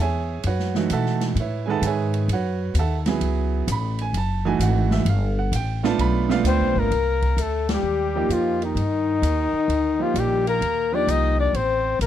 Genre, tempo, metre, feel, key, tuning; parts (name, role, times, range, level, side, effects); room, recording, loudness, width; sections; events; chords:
modal jazz; 130 BPM; 4/4; swing 67% on 8ths; C dorian from 6.9 s; A4 = 440 Hz
clear baby grand piano; accompaniment; 0.0-11.5 s; Eb3 to Cb6; -24 LUFS; right 8 dB
upright bass; bass; 0.0-12.1 s; Gb1 to Cb3; -24 LUFS; left 1 dB
open jazz drum kit; drums; 0.4-12.1 s; hi-hat, kick drum, ride cymbal, snare drum; -32 LUFS; equal
trumpet with bucket mute; melody; 6.5-12.1 s; Eb4 to Eb5; -23 LUFS; left 3 dB
warm tenor saxophone; second line; 6.5-12.1 s; Eb3 to Eb4; -28 LUFS; left 17 dB
little or no reverb; -20 LUFS; side -11 dB against mid
0.0-6.9 A section; 6.9-12.1 B section
band accent 7.6
0.0 Gbm11; 5.1 G7; 6.9 Cm9